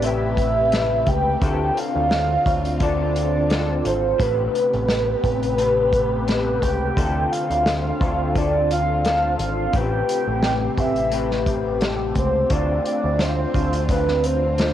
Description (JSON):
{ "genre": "indie pop, bedroom pop", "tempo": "87 BPM", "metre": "4/4", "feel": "swing 55% on 16ths", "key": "D dorian", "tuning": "A4 = 440 Hz", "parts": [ { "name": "soft octave-layered synth lead", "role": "melody", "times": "0.0-14.7 s", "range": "B4 to G5", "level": "-22 LUFS", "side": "right 2 dB", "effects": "phaser, lush chorus, cassette tape" }, { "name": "electric guitar through a small old amp", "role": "accompaniment", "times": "0.0-14.7 s", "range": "D3 to B4", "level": "-26 LUFS", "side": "left 8 dB", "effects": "analog chorus, vibrato effect, cassette tape" }, { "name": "soft string machine", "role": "sustained chords", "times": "0.0-14.7 s", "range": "C3 to B4", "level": "-28 LUFS", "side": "right 1 dB", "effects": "phaser, ensemble chorus, cassette tape" }, { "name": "deep dub picked electric bass", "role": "bass", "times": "0.0-14.7 s", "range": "G#1 to D2", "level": "-25 LUFS", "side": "equal", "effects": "none" }, { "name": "unplugged drum kit", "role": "drums", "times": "0.0-14.7 s", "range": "hi-hat, kick drum, snare drum", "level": "-25 LUFS", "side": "equal", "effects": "cassette tape" } ], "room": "light reverb", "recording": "home recording on cassette", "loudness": "-18 LUFS", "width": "side -11 dB against mid", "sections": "0.0-14.7 A section", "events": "none", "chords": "0.0 Am9; 1.4 Dm7; 4.2 Am9; 7.0 Dm7; 9.7 Am9; 12.5 Dm7" }